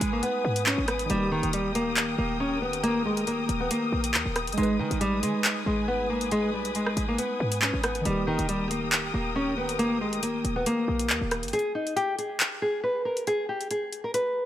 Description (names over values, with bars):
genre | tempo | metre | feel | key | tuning
hip hop, drill | 138 BPM | 4/4 | half-time | unclear | A4 = 441 Hz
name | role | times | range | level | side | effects
nylon-string guitar | melody | 0.0-14.5 s | D#3 to B4 | -27 LUFS | equal | low-pass filter
warbly lo-fi synth keys | accompaniment | 0.0-11.6 s | D#3 to B4 | -35 LUFS | right 2 dB | chorus, low-pass filter
bright symphonic string section | sustained chords | 0.0-11.5 s | A#4 to D#6 | -34 LUFS | left 3 dB | none
short 808-style bass | bass | 0.0-11.5 s | D#1 to D#3 | -33 LUFS | equal | none
drill drum kit | drums | 0.0-14.2 s | handclaps, hi-hat, rim click | -28 LUFS | equal | none
room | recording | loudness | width
light reverb, digital ambience | none | -24 LUFS | side -12 dB against mid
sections
0.0-11.5 A section; 11.5-14.5 B section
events
kick muted 11.5-14.5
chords
0.0 G#m; 1.1 D#; 4.6 G#m; 8.1 D#; 11.5 N.C.